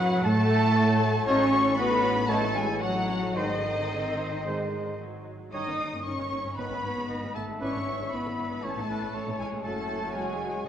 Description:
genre	classical, dramatic, fast romantic movement for symphony orchestra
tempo	116 BPM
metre	4/4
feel	rubato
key	unclear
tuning	A4 = 436 Hz
part	rich symphonic violin section	melody	0.0-10.7 s	D#5 to D#6	-34 LUFS	left 2 dB	none
part	clear oboe	second line	0.0-10.7 s	F#4 to E5	-38 LUFS	right 1 dB	none
part	dark symphonic violin section	second line	0.0-10.6 s	D#4 to D#5	-36 LUFS	left 3 dB	none
part	mellow large flute ensemble	second line	0.0-10.7 s	D#5 to D#6	-34 LUFS	left 2 dB	none
part	warm symphonic viola section	accompaniment	0.0-10.6 s	F#3 to A4	-34 LUFS	right 2 dB	none
part	mellow French horn section	sustained chords	0.0-10.7 s	D#3 to D#4	-33 LUFS	left 3 dB	none
part	warm trombone section	sustained chords	0.0-10.7 s	D#3 to D#4	-38 LUFS	right 2 dB	none
part	concert harp	arpeggios	0.0-10.7 s	F#2 to F#5	-37 LUFS	left 5 dB	none
part	mellow trumpet	stabs	0.0-10.7 s	B4 to A5	-36 LUFS	right 2 dB	none
part	clear symphonic cello section	bass	0.0-10.7 s	D#3 to D#4	-34 LUFS	right 3 dB	none
part	clear symphonic double bass section	bass	0.0-10.7 s	F#1 to A2	-34 LUFS	right 2 dB	none
room	wet concert hall reverb, RT60 2.3 s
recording	worn, warbling old tape, cassette tape, warbly pitch drift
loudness	-25 LUFS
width	side -9 dB against mid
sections	0.0-10.7 A section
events	none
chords	0.0 F#m; 1.3 D#m7b5/A; 3.4 G#; 5.5 D#7/G; 6.6 G#m; 7.6 E7/G#; 8.6 A; 9.6 F#m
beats	0.24 0.76 | 1.27 1.78 2.29 2.82 | 3.37 3.92 4.46 5.00 | 5.54 6.05 6.57 7.09 | 7.61 8.12 8.63 9.14 | 9.64 10.14 10.66

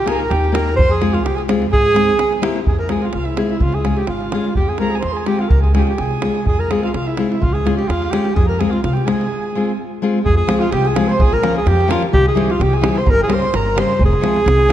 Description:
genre	balkan folk, Balkan wedding band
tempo	127 BPM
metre	2/4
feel	straight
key	F harmonic minor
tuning	A4 = 440 Hz
part	clear alto saxophone	melody	0.0-14.7 s	E4 to C5	-19 LUFS	right 1 dB	none
part	rich erhu	second line	0.0-14.7 s	E5 to C6	-27 LUFS	right 4 dB	none
part	upright bass	bass	0.0-14.7 s	F1 to Ab2	-19 LUFS	equal	none
part	nylon-string guitar	accompaniment	0.1-14.7 s	C3 to Bb4	-20 LUFS	left 3 dB	none
part	davul	percussion	0.1-14.7 s	none	-21 LUFS	right 1 dB	none
room	moderate concert hall reverb, RT60 1.9 s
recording	dark, warm production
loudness	-14 LUFS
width	side -11 dB against mid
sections	0.0-2.7 A section; 2.7-10.2 B section; 10.2-14.7 C section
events	break 9.3-10.2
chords	0.0 Eb; 0.8 Fm; 1.7 Ab; 2.2 C7; 2.7 Fm; 3.6 Db; 4.6 Fm; 5.5 Db; 6.5 Fm; 7.4 Db; 8.4 Fm; 11.2 Bbm; 12.1 C; 13.1 Gdim; 14.0 Fm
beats	0.30 | 0.77 1.24 | 1.72 2.19 | 2.67 3.14 | 3.62 4.09 | 4.57 5.04 | 5.52 5.99 | 6.47 6.94 | 7.42 7.89 | 8.36 8.84 | 9.31 9.78 | 10.25 10.72 | 11.19 11.66 | 12.12 12.59 | 13.06 13.53 | 13.99 14.46

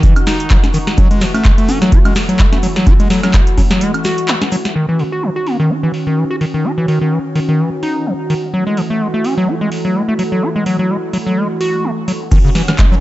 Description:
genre	acid house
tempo	127 BPM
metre	4/4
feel	swing 56% on 16ths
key	Eb phrygian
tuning	A4 = 440 Hz
part	warm analog pad	sustained chords	0.0-13.0 s	Eb3 to Gb4	-20 LUFS	equal	chorus, sidechain pumping
part	acid bass, square	riff	0.0-13.0 s	Db3 to Gb4	-16 LUFS	equal	overdrive, dub echo
part	booming analog drum machine	drums	0.0-12.9 s	congas, crash cymbal, handclaps, hi-hat, snare drum, woodblock	-20 LUFS	equal	low-pass filter on hats, low-pass filter on perc, low-pass filter on snare, low-pass filter on cymbals, low-pass filter on room
part	electronic kick drum	drums	0.0-3.7, 12.3-12.9 s	none	-11 LUFS	equal	none
part	tube shaker	percussion	0.0-4.7, 12.3-13.0 s	none	-35 LUFS	left 1 dB	none
room	light reverb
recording	dark, warm production, nothing above 7.9 kHz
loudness	-12 LUFS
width	side -16 dB against mid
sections	0.0-4.8 A section; 4.8-12.3 B section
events	drop 0.0-4.8; break 3.8-4.8; filter sweep on acid bass 4.8-12.3; filter sweep on analog synth pad 4.8-12.3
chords	0.0 Ebm; 1.0 Gbm7; 4.8 Ebm7; 8.5 Gbm7; 12.3 Ebm7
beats	0.03 0.50 | 0.98 1.45 1.92 2.39 | 2.87 3.34 3.81 4.28 | 4.76 5.23 5.70 6.17 | 6.65 7.12 7.59 8.06 | 8.54 9.01 9.48 9.95 | 10.43 10.90 11.37 11.84 | 12.31 12.79

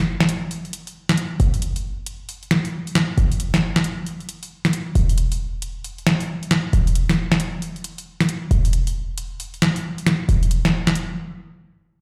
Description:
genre	UK garage, two-step garage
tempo	135 BPM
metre	4/4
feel	swing 63% on 16ths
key	unclear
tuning	A4 = 440 Hz
part	short 808-style bass	bass	0.0-11.2 s	E1 to F#1	-23 LUFS	equal	none
part	punchy analog drum machine	drums	0.2-11.1 s	hi-hat, snare drum	-22 LUFS	equal	none
room	wet studio reverb, RT60 0.6 s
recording	played on a big sound system in a bare room, large studio reverb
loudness	-21 LUFS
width	mono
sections	0.0-12.0 A section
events	stop 11.2-12.0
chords	none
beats	0.07 0.51 0.95 | 1.40 1.84 2.29 2.73 | 3.18 3.62 4.07 4.51 | 4.96 5.40 5.84 6.29 | 6.73 7.18 7.62 8.07 | 8.51 8.96 9.40 9.84 | 10.29 10.73

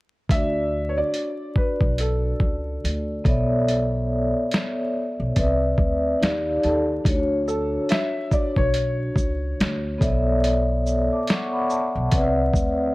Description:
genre	lo-fi hip hop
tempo	71 BPM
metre	4/4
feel	swing 58% on 16ths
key	D major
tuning	A4 = 440 Hz
part	felt-muted upright piano	melody	0.3-10.0 s	A4 to E5	-28 LUFS	equal	low-pass filter
part	vibraphone with soft mallets	accompaniment	0.3-12.9 s	B3 to D6	-23 LUFS	equal	cassette tape, low-pass filter
part	upright bass	bass	0.3-12.9 s	B1 to Eb2	-26 LUFS	equal	none
part	lo-fi sampler-style drum kit	drums	0.3-12.8 s	hi-hat, kick drum, shaker, snare drum	-22 LUFS	equal	overdrive
room	moderate spring reverb, RT60 2.0 s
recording	vinyl crackle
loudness	-20 LUFS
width	side -20 dB against mid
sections	0.3-7.1 A section; 7.1-12.9 B section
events	vibraphone fill 5.8-7.1, 12.1-12.9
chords	0.3 D6; 3.2 Bm11; 5.4 Cmaj9; 6.2 Ebmaj9; 7.1 D6; 10.0 Bm11; 12.1 Cmaj9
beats	| 0.29 1.14 1.98 2.83 | 3.67 4.52 5.36 6.21 | 7.05 7.90 8.74 9.59 | 10.43 11.28 12.12

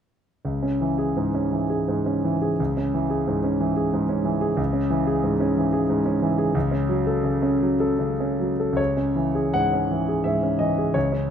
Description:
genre	classical, romantic character piece for solo piano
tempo	74-93 BPM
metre	3/4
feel	rubato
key	C# minor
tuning	A4 = 440 Hz
part	warm concert grand piano	solo	0.4-11.3 s	C#2 to F#5	-20 LUFS	equal	none
room	wet recital hall reverb, RT60 1.6 s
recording	none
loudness	-20 LUFS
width	side -8 dB against mid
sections	0.4-8.8 A section; 8.8-11.3 B section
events	none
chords	0.4 C#m; 6.5 F#m/C#; 8.8 C#m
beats	| 0.44 1.17 1.87 | 2.59 3.27 3.93 | 4.58 5.25 5.90 | 6.55 7.25 8.01 | 8.79 9.55 10.26 | 10.95

